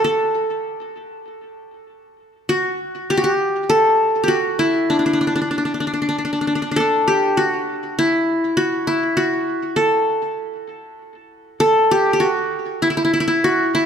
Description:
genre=arabic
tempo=99 BPM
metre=4/4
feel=straight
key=unclear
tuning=A4 = 440 Hz
part: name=qanun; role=solo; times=0.0-13.9 s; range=D4 to A4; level=-17 LUFS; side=equal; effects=tape echo
room=moderate recital hall reverb, RT60 1.6 s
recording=none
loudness=-16 LUFS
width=side -7 dB against mid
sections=0.0-7.3 A section; 7.3-13.9 B section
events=none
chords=none

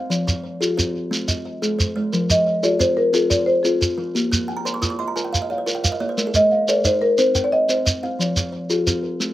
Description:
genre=southern african traditional, mbira-style interlocking cycle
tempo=119 BPM (dotted quarters)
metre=12/8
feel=straight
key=F equiheptatonic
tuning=A4 = 441 Hz
part: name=kalimba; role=arpeggios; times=0.0-9.3 s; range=F3 to G5-29c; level=-24 LUFS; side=left 3 dB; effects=none
part: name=kalimba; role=arpeggios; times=0.0-9.3 s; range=F3 to Eb6+29c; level=-27 LUFS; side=right 3 dB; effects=none
part: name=shekere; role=percussion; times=0.1-9.3 s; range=none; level=-22 LUFS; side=right 1 dB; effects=none
part: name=marimba with soft mallets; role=melody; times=2.3-8.0 s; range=Ab4+43c to Eb5+29c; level=-17 LUFS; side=equal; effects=slapback echo
room=little or no reverb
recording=recorded outdoors, with no room sound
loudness=-18 LUFS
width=side -14 dB against mid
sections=0.0-2.1 A section; 2.1-9.3 B section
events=kalimba fill 4.3-6.2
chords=0.1 Fm; 1.1 Ab; 2.1 Fm; 4.2 Bb; 6.2 Ab; 7.2 Cm; 8.2 Fm

